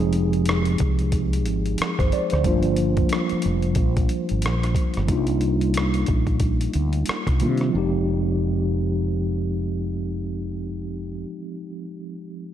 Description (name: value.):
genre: R&B, neo-soul.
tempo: 91 BPM.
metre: 4/4.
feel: swing 59% on 16ths.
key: F dorian.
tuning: A4 = 438 Hz.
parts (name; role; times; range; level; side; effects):
mellow tine electric piano; accompaniment; 0.0-12.5 s; Eb3 to D5; -24 LUFS; equal; medium stereo tremolo.
mellow fretless electric bass; bass; 0.0-11.2 s; F1 to C3; -24 LUFS; equal; none.
boom bap sampler-style drum kit; drums; 0.1-7.7 s; hi-hat, kick drum, rim click; -25 LUFS; equal; none.
room: light reverb.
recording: none.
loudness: -20 LUFS.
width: side -11 dB against mid.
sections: 0.0-7.7 A section; 7.7-10.4 B section.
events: none.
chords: 0.0 Fm9; 2.4 Gm7; 5.1 Cm11; 7.7 Fm9.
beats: 0.47 1.13 1.78 | 2.44 3.10 3.76 4.42 | 5.08 5.74 6.40 7.06 | 7.72 8.38 9.04 9.70.